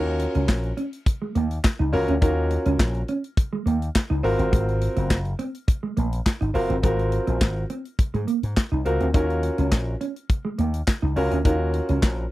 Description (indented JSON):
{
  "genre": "early-eighties boogie funk",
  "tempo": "104 BPM",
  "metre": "4/4",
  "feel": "straight",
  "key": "Eb dorian",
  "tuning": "A4 = 439 Hz",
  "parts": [
    { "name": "clear grand piano", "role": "accompaniment", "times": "0.0-12.2 s", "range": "C4 to Bb4", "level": "-25 LUFS", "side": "equal", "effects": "tube saturation" },
    { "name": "slap bass with an envelope filter", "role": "bass", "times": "0.0-12.2 s", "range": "Gb1 to Ab2", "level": "-24 LUFS", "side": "equal", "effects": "none" },
    { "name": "mellow electric guitar", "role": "riff", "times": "0.2-12.0 s", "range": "Ab3 to Eb4", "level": "-27 LUFS", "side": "right 4 dB", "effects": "lush chorus" },
    { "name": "modern studio drum kit", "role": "drums", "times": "0.2-12.2 s", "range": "handclaps, hi-hat, kick drum, snare drum", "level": "-21 LUFS", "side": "equal", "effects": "none" }
  ],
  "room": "little or no reverb",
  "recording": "dry, close 1970s-style studio recording",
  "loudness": "-21 LUFS",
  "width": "side -16 dB against mid",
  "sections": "0.0-12.3 A section",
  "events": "none",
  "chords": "0.0 Ebm9; 4.2 Ab13; 9.1 Ebm9",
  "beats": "0.49 1.07 1.64 | 2.22 2.80 3.37 3.95 | 4.53 5.11 5.68 6.26 | 6.84 7.41 7.99 8.57 | 9.14 9.72 10.30 10.87 | 11.45 12.03"
}